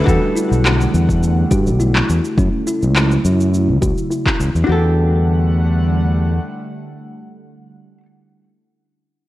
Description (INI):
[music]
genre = sunset chillout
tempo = 104 BPM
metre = 4/4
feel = straight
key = E dorian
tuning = A4 = 440 Hz
[part]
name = vintage hollow-body jazz guitar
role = accompaniment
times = 0.0-8.1 s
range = G3 to A4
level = -21 LUFS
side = left 1 dB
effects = auto-pan, tape echo
[part]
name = airy breathy pad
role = sustained chords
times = 0.0-7.8 s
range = C#3 to F#5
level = -24 LUFS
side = right 2 dB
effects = chorus
[part]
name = kalimba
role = arpeggios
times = 0.0-4.9 s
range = C#4 to F#4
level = -24 LUFS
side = left 2 dB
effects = low-pass filter, tape echo
[part]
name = overdriven fingered electric bass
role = bass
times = 0.1-6.4 s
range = B1 to G2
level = -15 LUFS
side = equal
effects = tube saturation
[part]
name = electronic cabasa and handclaps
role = drums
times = 0.1-4.7 s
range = none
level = -21 LUFS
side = equal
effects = overdrive
[part]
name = electronic kick drum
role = drums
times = 0.1-4.4 s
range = none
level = -19 LUFS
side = equal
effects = overdrive
[sound]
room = light reverb, digital ambience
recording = worn, warbling old tape, cassette tape, warbly pitch drift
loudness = -13 LUFS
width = side -16 dB against mid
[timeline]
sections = 0.1-4.7 A section; 4.7-7.0 B section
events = filter sweep on analog synth pad 0.1-4.7; filter sweep on kalimba 0.1-4.7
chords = 0.1 Em11; 2.4 F#m7; 4.7 Em11